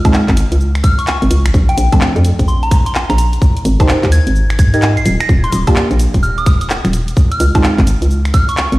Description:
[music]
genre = UK garage, two-step garage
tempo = 128 BPM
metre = 4/4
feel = swing 63% on 16ths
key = unclear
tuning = A4 = 440 Hz
[part]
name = deep mellow chord stab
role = stabs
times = 0.0-7.7 s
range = F3 to Eb5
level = -20 LUFS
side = right 1 dB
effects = chorus, cassette tape, tape echo
[part]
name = electronic kick drum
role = drums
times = 0.0-8.5 s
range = none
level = -11 LUFS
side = equal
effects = studio reverb
[part]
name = garage drum kit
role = drums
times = 0.1-8.8 s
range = cabasa, finger snaps, handclaps, hi-hat, woodblock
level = -21 LUFS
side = equal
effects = studio reverb
[part]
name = hollow knocking FM bass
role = bass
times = 0.3-8.8 s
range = Eb1 to Ab2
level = -13 LUFS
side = equal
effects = tube saturation
[part]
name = soft synth bell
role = melody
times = 0.8-8.7 s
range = G5 to C7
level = -21 LUFS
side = equal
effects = chorus, phaser, tape echo
[sound]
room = little or no reverb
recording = played on a big sound system in a bare room, stone room reverb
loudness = -10 LUFS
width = side -18 dB against mid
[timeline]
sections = 0.0-8.8 A section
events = none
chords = 0.0 Dbmaj9; 1.5 Bbmaj9; 3.4 Abmaj9; 5.3 Ebmaj9; 7.2 Dbmaj9

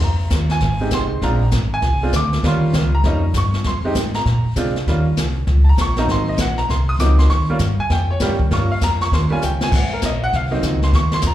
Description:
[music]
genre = jazz, small-group swing and bop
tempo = 198 BPM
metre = 4/4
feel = swing 63% on 8ths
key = Eb mixolydian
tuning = A4 = 440 Hz
[part]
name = clear baby grand piano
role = accompaniment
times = 0.0-11.3 s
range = Gb3 to Eb6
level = -22 LUFS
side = right 1 dB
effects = plate reverb, slapback echo
[part]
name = upright bass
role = bass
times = 0.0-11.3 s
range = Ab1 to C3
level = -17 LUFS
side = equal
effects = none
[part]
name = jazz brush drum kit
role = drums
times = 0.0-11.3 s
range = brushed snare drum, crash cymbal, hi-hat, kick drum, snare drum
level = -22 LUFS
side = left 1 dB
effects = none
[sound]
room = light reverb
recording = live gig heard through the venue's PA, club reverb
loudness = -15 LUFS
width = side -13 dB against mid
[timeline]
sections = 0.0-4.9 A section; 4.9-11.3 A section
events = drum fill 9.4-9.7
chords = 0.0 Fm7; 1.2 Bb9; 2.4 Eb9; 3.7 Fm7; 4.3 Bb9; 4.9 Eb9; 6.1 Ab9; 7.3 Eb9; 9.7 Ab9

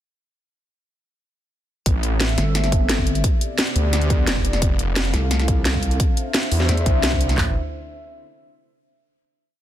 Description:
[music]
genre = dark technical drum and bass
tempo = 174 BPM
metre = 4/4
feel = straight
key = A minor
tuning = A4 = 443 Hz
[part]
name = dark analog pad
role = sustained chords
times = 2.0-7.5 s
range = B3 to F5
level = -28 LUFS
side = left 1 dB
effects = chorus, phaser, sidechain pumping
[part]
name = wide detuned saw bass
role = bass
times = 1.9-7.5 s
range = F1 to E2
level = -21 LUFS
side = equal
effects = chorus, tube saturation, sidechain pumping
[part]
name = drum and bass drum kit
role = drums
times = 1.9-7.4 s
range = hi-hat, snare drum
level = -23 LUFS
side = equal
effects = none
[part]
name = dubstep drum kit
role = drums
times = 1.9-7.5 s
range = handclaps, kick drum, toms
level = -21 LUFS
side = equal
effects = none
[part]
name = pulsing pluck wobble bass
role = bass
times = 2.4-6.8 s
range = G1 to E2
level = -21 LUFS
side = equal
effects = distortion, chorus
[sound]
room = light reverb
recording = dense, heavily limited modern master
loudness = -17 LUFS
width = side -12 dB against mid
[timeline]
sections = 1.9-7.4 drop; 7.4-8.8 final chord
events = drop 1.9-7.4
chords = 1.9 Am; 3.2 G; 4.6 F; 6.0 Cadd9; 7.4 Am

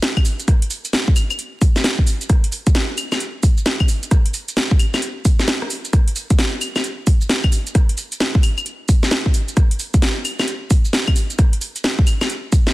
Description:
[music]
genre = UK garage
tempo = 132 BPM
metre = 4/4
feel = swing 63% on 16ths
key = none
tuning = none
[part]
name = house drum kit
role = drums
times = 0.0-12.7 s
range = claves, hi-hat, rim click, shaker, snare drum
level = -20 LUFS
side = equal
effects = none
[part]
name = electronic kick drum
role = drums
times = 0.2-12.6 s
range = none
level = -14 LUFS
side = equal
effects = none
[sound]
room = little or no reverb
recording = dense, heavily limited modern master, vinyl crackle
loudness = -16 LUFS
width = side -19 dB against mid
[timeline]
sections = 0.0-12.7 A section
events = break 5.5-5.9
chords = none

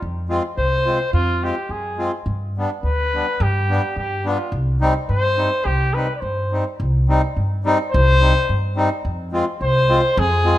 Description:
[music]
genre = alpine folk, alpine dance band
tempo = 107 BPM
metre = 2/4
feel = rubato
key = C harmonic minor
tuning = A4 = 439 Hz
[part]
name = upright bass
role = bass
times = 0.0-10.5 s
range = C2 to G2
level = -20 LUFS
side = equal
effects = none
[part]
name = accordion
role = accompaniment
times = 0.3-10.6 s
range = G3 to F4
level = -23 LUFS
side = left 1 dB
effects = none
[part]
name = mellow trumpet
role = melody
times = 0.6-10.6 s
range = F4 to D5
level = -20 LUFS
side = left 1 dB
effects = none
[sound]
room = moderate recital hall reverb, RT60 1.6 s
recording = none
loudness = -17 LUFS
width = side -14 dB against mid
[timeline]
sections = 0.0-6.8 A section; 6.8-10.6 A section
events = none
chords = 0.0 Fm; 2.3 G; 4.5 Cm; 9.0 Fm

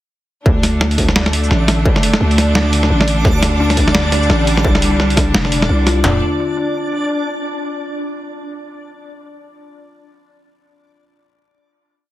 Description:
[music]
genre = half-time drum and bass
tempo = 172 BPM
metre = 4/4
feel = swing 59% on 16ths, half-time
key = unclear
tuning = A4 = 440 Hz
[part]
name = rich symphonic string section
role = sustained chords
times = 0.5-6.2 s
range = D3 to D5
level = -20 LUFS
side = right 1 dB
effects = sidechain pumping
[part]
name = growling 808-style bass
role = bass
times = 0.5-6.2 s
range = D1 to D2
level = -15 LUFS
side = equal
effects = tube saturation
[part]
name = industrial drum kit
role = drums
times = 0.5-6.1 s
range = kick drum, snare drum, toms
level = -16 LUFS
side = equal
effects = distortion
[part]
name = backwards swelling texture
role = texture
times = 1.3-6.1 s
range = D4 to D5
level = -24 LUFS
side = equal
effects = built-in reverb
[part]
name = boom bap sampler-style drum kit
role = drums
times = 0.6-6.0 s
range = hi-hat, shaker, snare drum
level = -17 LUFS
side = equal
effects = none
[part]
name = kalimba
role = arpeggios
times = 3.6-6.2 s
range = D4 to F4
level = -23 LUFS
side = left 4 dB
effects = dub echo
[sound]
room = light reverb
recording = heavily compressed radio sound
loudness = -12 LUFS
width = side -14 dB against mid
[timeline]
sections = 0.5-6.0 drop; 6.0-7.4 final chord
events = drop 0.5-6.0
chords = 0.5 D5

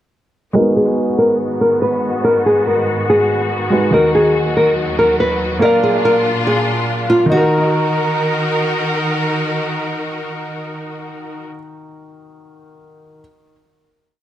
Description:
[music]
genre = hip hop, drill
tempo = 142 BPM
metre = 4/4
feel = half-time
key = Eb harmonic minor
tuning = A4 = 440 Hz
[part]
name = warm concert grand piano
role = accompaniment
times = 0.5-13.2 s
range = Eb3 to F5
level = -19 LUFS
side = right 1 dB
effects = low-pass filter, analog delay
[part]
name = nylon-string guitar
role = melody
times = 0.6-8.5 s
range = F4 to Cb5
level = -15 LUFS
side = equal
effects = low-pass filter
[part]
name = rich studio string section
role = sustained chords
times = 0.6-11.5 s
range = Eb2 to Bb4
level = -20 LUFS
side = equal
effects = low-pass filter
[sound]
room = light reverb, studio reverb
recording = echo-heavy mix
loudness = -13 LUFS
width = side -12 dB against mid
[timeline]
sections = 0.6-7.3 breakdown; 7.3-10.7 final chord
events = filter sweep 0.6-7.3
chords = 0.6 Abm7; 3.9 Ebm; 5.6 Bb; 7.3 Ebm

